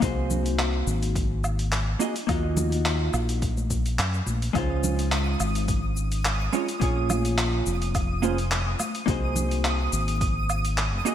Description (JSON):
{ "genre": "sunset chillout", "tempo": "106 BPM", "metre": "4/4", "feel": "swing 54% on 16ths", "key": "unclear", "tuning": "A4 = 439 Hz", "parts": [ { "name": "vintage hollow-body jazz guitar", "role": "accompaniment", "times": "0.0-11.1 s", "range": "Ab3 to Eb5", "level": "-29 LUFS", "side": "moving between left 4 dB and right 3 dB", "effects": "auto-pan, ping-pong delay" }, { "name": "fingered electric bass", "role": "bass", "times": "0.0-11.0 s", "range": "F1 to Gb2", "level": "-26 LUFS", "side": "equal", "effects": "none" }, { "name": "dusty soul sampler-style drum kit", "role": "drums", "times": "0.0-11.1 s", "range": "handclaps, hi-hat, shaker, woodblock", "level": "-30 LUFS", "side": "equal", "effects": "overdrive, small room ambience, gated reverb" }, { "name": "electronic kick drum", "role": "drums", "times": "0.0-10.3 s", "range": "none", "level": "-28 LUFS", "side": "equal", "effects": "small room ambience" }, { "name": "congas", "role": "percussion", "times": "0.3-9.5 s", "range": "none", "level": "-34 LUFS", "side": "right 1 dB", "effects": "none" }, { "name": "twinkling granular texture", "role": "texture", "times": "4.7-11.1 s", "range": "Eb6", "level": "-34 LUFS", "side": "right 2 dB", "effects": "built-in reverb, analog chorus" } ], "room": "light reverb", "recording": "bright 1980s-style digital production", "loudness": "-23 LUFS", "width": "side -10 dB against mid", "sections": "0.0-11.1 A section", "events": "none", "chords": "0.0 Ab9; 2.3 Ebmadd9; 4.6 Dbmaj9; 6.8 Bbm7; 9.1 Ab9", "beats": "| 0.02 0.59 1.16 1.72 | 2.29 2.85 3.42 3.99 | 4.55 5.12 5.68 6.25 | 6.82 7.38 7.95 8.51 | 9.08 9.65 10.21 10.78" }